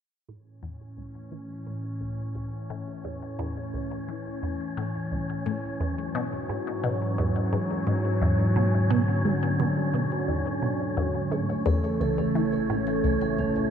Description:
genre	ambient, sequencer-driven space music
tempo	87 BPM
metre	4/4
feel	straight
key	A major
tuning	A4 = 440 Hz
part	phased analog pad	sustained chords	0.3-13.7 s	G#2 to C#4	-28 LUFS	left 1 dB	phaser, chorus
part	resonant blip pluck	riff	0.3-13.6 s	C#2 to E3	-30 LUFS	equal	phaser, ping-pong delay
part	wind-like tuned noise texture	texture	1.7-13.7 s	C#4 to C#5	-34 LUFS	equal	built-in reverb
part	vibraphone with soft mallets	arpeggios	11.3-13.7 s	A3 to A4	-28 LUFS	moving between left 1 dB and right 6 dB	auto-pan, ping-pong delay
part	analog drone	bass	12.4-13.7 s	A1	-42 LUFS	equal	chorus
room	moderate plate reverb, RT60 2.6 s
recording	none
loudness	-25 LUFS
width	side -8 dB against mid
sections	0.3-11.3 A section; 11.3-13.7 B section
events	fade-in on synth arpeggio sound 0.3-11.3; fade-in on analog synth pad 0.3-11.3; fade-in on synth texture 0.3-11.3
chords	0.3 A; 5.8 Eadd9; 11.3 A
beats	| 0.29 0.98 1.67 2.36 | 3.05 3.74 4.43 5.12 | 5.80 6.50 7.18 7.87 | 8.56 9.25 9.94 10.63 | 11.32 12.01 12.70 13.39

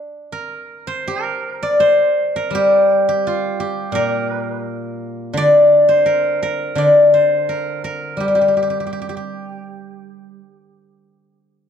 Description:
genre	chinese traditional, Chinese solo plucked strings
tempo	84 BPM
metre	4/4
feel	uneven beats, rubato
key	D jue mode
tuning	A4 = 441 Hz
part	steel-string zither	solo	0.0-11.5 s	Bb2 to D5	-15 LUFS	left 1 dB	none
room	moderate recital hall reverb, RT60 1.7 s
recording	dark, warm production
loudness	-14 LUFS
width	side -8 dB against mid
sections	0.0-11.7 A section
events	none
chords	none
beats	0.29 1.04 1.78 | 2.52 3.25 3.94 4.64 | 5.35 6.06 6.76 7.46 | 8.17 8.89 9.63 10.38 | 11.13

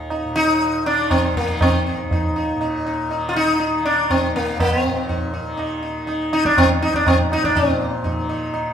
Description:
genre	indian classical, Hindustani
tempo	121 BPM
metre	3/4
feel	straight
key	unclear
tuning	A4 = 440 Hz
part	tanpura	drone	0.0-8.7 s	Eb2 to Eb3	-28 LUFS	left 1 dB	none
part	sitar	melody	0.1-8.7 s	Bb3 to F4	-19 LUFS	equal	none
part	tabla	percussion	0.1-8.7 s	none	-23 LUFS	right 1 dB	none
room	wet recital hall reverb, RT60 1.4 s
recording	minimal, uncompressed stereo recording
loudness	-17 LUFS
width	side -8 dB against mid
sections	0.0-7.6 A section; 7.6-8.7 B section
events	speeding up 0.0-8.7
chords	none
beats	| 0.11 0.61 1.11 | 1.61 2.11 2.61 | 3.11 3.61 4.11 | 4.60 5.10 5.59 | 6.08 6.58 7.07 | 7.56 8.05 8.54

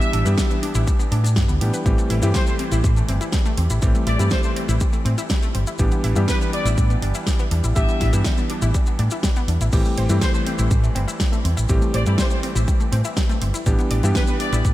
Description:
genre	nu-disco, nu disco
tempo	122 BPM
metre	4/4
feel	straight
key	A minor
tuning	A4 = 441 Hz
part	clear trumpet section	melody	0.0-14.6 s	B4 to E5	-30 LUFS	left 1 dB	diffuse ambient delay
part	warm electric grand piano	accompaniment	0.0-14.7 s	E3 to G4	-26 LUFS	equal	diffuse ambient delay
part	analog pluck	arpeggios	0.0-14.7 s	G3 to D5	-30 LUFS	left 2 dB	chorus, cassette tape, sidechain pumping, diffuse ambient delay
part	pop drum kit	drums	0.0-14.7 s	crash cymbal, hi-hat, snare drum	-30 LUFS	right 1 dB	studio reverb
part	maracas	percussion	0.0-14.7 s	none	-35 LUFS	left 2 dB	none
part	fingered electric bass	bass	0.1-14.7 s	G1 to A2	-20 LUFS	equal	sidechain pumping
part	electronic kick drum	drums	0.4-14.7 s	none	-20 LUFS	equal	studio reverb
room	light reverb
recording	none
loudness	-17 LUFS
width	side -15 dB against mid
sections	0.0-14.7 A section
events	none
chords	0.0 Em7; 1.9 Am7; 5.8 Em7; 9.7 Am7; 13.7 Em7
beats	0.38 0.88 1.37 | 1.86 2.35 2.84 3.33 | 3.83 4.32 4.81 5.30 | 5.79 6.29 6.78 7.27 | 7.76 8.25 8.74 9.24 | 9.73 10.22 10.71 11.20 | 11.70 12.19 12.68 13.17 | 13.66 14.15 14.65

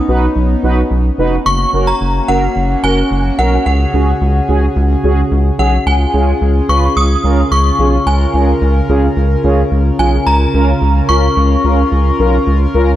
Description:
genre	synth-pop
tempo	109 BPM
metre	4/4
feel	straight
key	unclear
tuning	A4 = 440 Hz
part	chorused pulse-width pad	sustained chords	0.0-13.0 s	C#3 to A#4	-18 LUFS	equal	none
part	mellow synth brass	accompaniment	0.1-12.9 s	C#4 to B4	-18 LUFS	right 1 dB	chorus
part	rubbery square bass	bass	0.1-12.9 s	E#1 to C#2	-13 LUFS	equal	none
part	synth chime	melody	1.5-13.0 s	F#5 to D#6	-17 LUFS	left 1 dB	ensemble chorus, phaser, tape echo
room	light reverb, digital ambience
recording	none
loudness	-10 LUFS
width	side -13 dB against mid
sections	0.0-5.9 A section; 5.9-13.0 B section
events	none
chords	0.0 Badd9; 1.5 F#; 3.7 C#sus4; 5.9 C#; 10.3 A#m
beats	0.36 0.91 | 1.46 2.01 2.56 3.11 | 3.66 4.21 4.76 5.31 | 5.86 6.41 6.96 7.51 | 8.07 8.62 9.17 9.72 | 10.27 10.82 11.37 11.92 | 12.47

